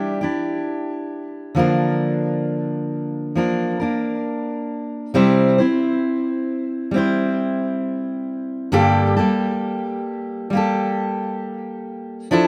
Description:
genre	pop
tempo	67 BPM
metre	4/4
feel	straight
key	unclear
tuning	A4 = 444 Hz
part	fingerpicked steel-string acoustic guitar	solo	0.0-12.5 s	G2 to C5	-21 LUFS	equal	digital delay
room	light reverb, studio ambience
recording	rough home demo mix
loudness	-21 LUFS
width	mono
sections	0.0-5.2 A section; 5.2-12.5 B section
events	none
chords	0.0 Cadd9 (rootless); 1.6 Bb/D; 5.2 C; 8.7 Gmadd9

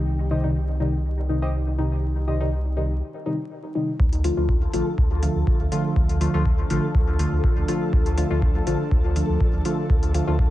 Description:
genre	dub techno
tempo	122 BPM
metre	4/4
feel	straight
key	D phrygian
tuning	A4 = 441 Hz
part	airy breathy pad	sustained chords	0.0-10.5 s	Eb3 to A4	-34 LUFS	left 1 dB	chorus, sidechain pumping
part	deep mellow chord stab	stabs	0.0-10.4 s	C3 to F4	-25 LUFS	equal	chorus, phaser, sidechain pumping, dub echo
part	warm sub bass	bass	0.0-10.5 s	A1 to D2	-24 LUFS	equal	sidechain pumping
part	flickering grainy texture	texture	0.0-10.5 s	G4 to A4	-38 LUFS	left 2 dB	built-in reverb, sidechain pumping
part	warbly lo-fi synth keys	riff	0.3-2.4 s	G4 to Eb5	-37 LUFS	left 2 dB	chorus, sidechain pumping, dub echo
part	electronic kick drum	drums	4.0-10.5 s	none	-21 LUFS	equal	none
part	electronic hi-hat	drums	4.1-10.2 s	none	-38 LUFS	left 1 dB	none
room	light reverb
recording	vinyl crackle, nothing above 10.6 kHz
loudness	-20 LUFS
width	side -15 dB against mid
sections	0.0-4.0 A section; 4.0-10.5 B section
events	break 3.0-4.0; filter sweep on synth stab 4.0-10.5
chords	0.0 Cm; 4.0 Dm

